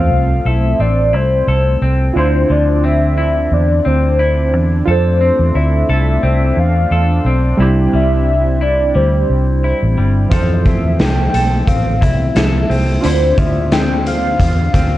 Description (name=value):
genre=indie pop, bedroom pop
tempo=88 BPM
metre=4/4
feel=swing 55% on 16ths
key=unclear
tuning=A4 = 440 Hz
part: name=soft octave-layered synth lead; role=melody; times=0.0-15.0 s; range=C5 to G5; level=-18 LUFS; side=left 1 dB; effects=phaser, analog chorus, analog delay
part: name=semi-hollow electric guitar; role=accompaniment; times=0.0-15.0 s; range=C3 to A4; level=-22 LUFS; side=left 3 dB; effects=wide subtle chorus, warbly pitch drift
part: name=warm analog keys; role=accompaniment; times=0.0-15.0 s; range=E3 to C5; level=-23 LUFS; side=right 3 dB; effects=chorus, cassette tape
part: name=lush unison pad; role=sustained chords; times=0.0-15.0 s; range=D3 to D4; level=-24 LUFS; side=equal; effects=chorus
part: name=vintage muted fingered electric bass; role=bass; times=0.0-15.0 s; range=G1 to F2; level=-14 LUFS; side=equal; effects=none
part: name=raw garage drum kit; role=drums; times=10.3-14.9 s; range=hi-hat, kick drum, snare drum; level=-16 LUFS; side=equal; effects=vintage 12-bit sampler grit
room=small room ambience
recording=cassette tape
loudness=-11 LUFS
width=side -15 dB against mid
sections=0.0-15.0 A section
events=none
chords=0.0 Fmaj7; 2.2 Dm9; 4.9 Fmaj7; 7.6 C; 10.3 Fmaj7; 13.0 Dm9